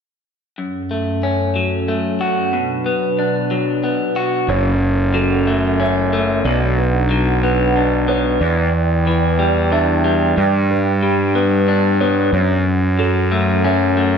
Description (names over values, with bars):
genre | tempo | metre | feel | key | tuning
rock | 61 BPM (dotted quarters) | 6/8 | straight | unclear | A4 = 441 Hz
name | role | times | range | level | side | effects
hollow soft pad | sustained chords | 0.6-14.2 s | F#2 to G5 | -23 LUFS | right 1 dB | chorus
electric guitar through a small old amp | arpeggios | 0.6-14.2 s | E2 to F#4 | -18 LUFS | left 2 dB | analog delay, slapback echo
felt-muted upright piano | arpeggios | 4.5-14.2 s | A4 to E5 | -24 LUFS | right 6 dB | analog delay, slapback echo
fuzz picked electric bass | bass | 4.5-14.2 s | F#1 to G2 | -17 LUFS | equal | overdrive
room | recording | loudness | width
moderate recital hall reverb, RT60 1.6 s | big arena sound, nothing above 10.6 kHz | -14 LUFS | side -6 dB against mid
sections
0.6-4.5 A section; 4.5-14.2 B section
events
none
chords
0.6 F#m; 2.5 Bm; 4.5 F#m; 6.5 Bm; 8.4 Em7; 10.4 G; 12.3 F#m